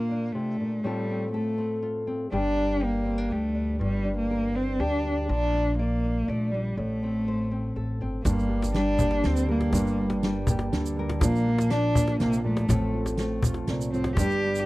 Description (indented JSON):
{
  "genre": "acoustic folk duo or small band",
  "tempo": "121 BPM",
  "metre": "3/4",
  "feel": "straight",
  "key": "G minor",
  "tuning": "A4 = 440 Hz",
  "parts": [
    { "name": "warm cello", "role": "melody", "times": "0.0-14.6 s", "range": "G3 to G4", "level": "-27 LUFS", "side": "equal", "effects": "none" },
    { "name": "nylon-string guitar", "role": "accompaniment", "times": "0.0-14.7 s", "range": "G2 to D5", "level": "-31 LUFS", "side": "left 1 dB", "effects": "none" },
    { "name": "upright bass", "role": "bass", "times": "2.3-14.7 s", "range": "G1 to D2", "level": "-30 LUFS", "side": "equal", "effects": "none" },
    { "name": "soft-mallet drum kit", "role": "drums", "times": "8.2-14.3 s", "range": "hi-hat, kick drum, snare drum", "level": "-30 LUFS", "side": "equal", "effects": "none" },
    { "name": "felt-muted upright piano", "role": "arpeggios", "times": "8.3-14.7 s", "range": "F3 to D4", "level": "-32 LUFS", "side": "right 4 dB", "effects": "none" },
    { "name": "cajon", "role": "percussion", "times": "8.3-14.3 s", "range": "none", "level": "-27 LUFS", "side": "left 1 dB", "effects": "none" },
    { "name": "tube shaker", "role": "percussion", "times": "8.3-14.7 s", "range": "none", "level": "-40 LUFS", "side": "right 8 dB", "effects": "none" }
  ],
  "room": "light reverb",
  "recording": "dry, close 1970s-style studio recording",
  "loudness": "-24 LUFS",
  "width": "side -19 dB against mid",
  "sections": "0.0-8.3 A section; 8.3-14.7 B section",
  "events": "none",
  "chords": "0.0 Bb; 0.8 F/A; 2.3 Gm; 5.3 Bb; 6.8 Gsus24; 8.3 Gm; 11.2 Bb; 12.7 F/A",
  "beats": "0.35 | 0.84 1.34 1.83 | 2.33 2.82 3.31 | 3.81 4.30 4.80 | 5.29 5.79 6.28 | 6.78 7.27 7.76 | 8.26 8.75 9.24 | 9.74 10.23 10.72 | 11.22 11.71 12.20 | 12.70 13.19 13.68 | 14.18"
}